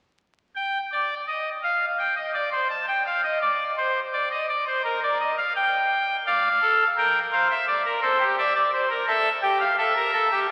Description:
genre	classical, baroque-style 4-part fugue for pipe organ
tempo	85 BPM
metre	4/4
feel	straight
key	unclear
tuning	A4 = 440 Hz
part	pipe organ, trumpet	solo	0.6-10.5 s	G4 to A5	-23 LUFS	equal	none
room	wet church reverb, RT60 3.6 s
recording	very old 78 rpm record, vinyl crackle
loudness	-23 LUFS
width	mono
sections	0.6-10.5 A section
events	none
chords	0.6 N.C.; 6.3 Dm; 7.7 Em7b5; 9.1 A5

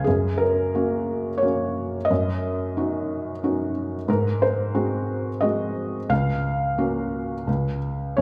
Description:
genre	classical, lyrical solo piano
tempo	89 BPM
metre	3/4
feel	uneven beats, rubato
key	F# major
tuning	A4 = 439 Hz
part	felt-muted upright piano	solo	0.0-8.2 s	C#2 to E#5	-24 LUFS	equal	none
room	wet recital hall reverb, RT60 1.4 s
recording	recorded in a church or concert hall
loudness	-24 LUFS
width	mono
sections	0.1-8.2 A section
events	none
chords	0.1 F#; 2.1 D#m7/F#; 4.1 G#7; 6.1 F#/C#; 7.5 N.C.

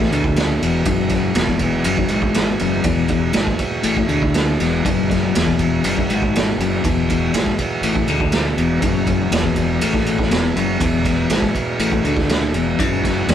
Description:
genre	psychedelic rock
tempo	121 BPM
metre	4/4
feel	straight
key	E mixolydian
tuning	A4 = 441 Hz
part	overdriven combo organ	sustained chords	0.0-13.3 s	E3 to G#4	-28 LUFS	right 6 dB	none
part	clean electric guitar	riff	0.0-13.3 s	E2 to D3	-20 LUFS	left 5 dB	harmonic tremolo
part	fuzz fingered electric bass	bass	0.0-13.3 s	E1 to D2	-24 LUFS	right 1 dB	overdrive
part	pedal harmonium	drone	0.0-13.3 s	E2 to B2	-28 LUFS	right 3 dB	none
part	raw garage drum kit	drums	0.0-13.3 s	kick drum, ride cymbal, snare drum	-19 LUFS	right 2 dB	none
room	moderate studio reverb, RT60 0.6 s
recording	band playing live in one room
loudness	-16 LUFS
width	side -10 dB against mid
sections	0.0-13.3 A section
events	none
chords	0.0 E

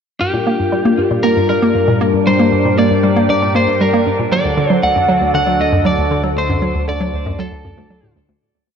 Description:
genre	ambient, sequencer-driven space music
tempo	117 BPM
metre	4/4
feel	straight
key	G minor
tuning	A4 = 436 Hz
part	lightly driven lead guitar	melody	0.2-8.1 s	G4 to F#5	-18 LUFS	equal	tape echo
part	phased analog pad	sustained chords	0.2-8.4 s	D3 to Bb4	-18 LUFS	left 2 dB	phaser, chorus
part	hollow square pluck	riff	0.2-8.4 s	D2 to Bb3	-17 LUFS	equal	chorus, tape echo
part	analog drone	bass	1.1-8.4 s	D2 to G2	-23 LUFS	left 1 dB	chorus
part	wind-like tuned noise texture	texture	1.1-8.4 s	D5	-26 LUFS	right 6 dB	built-in reverb
room	wet plate reverb, RT60 2.6 s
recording	none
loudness	-12 LUFS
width	side -7 dB against mid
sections	0.2-8.4 A section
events	fade-out 5.7-8.4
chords	0.2 Gm7; 4.3 D

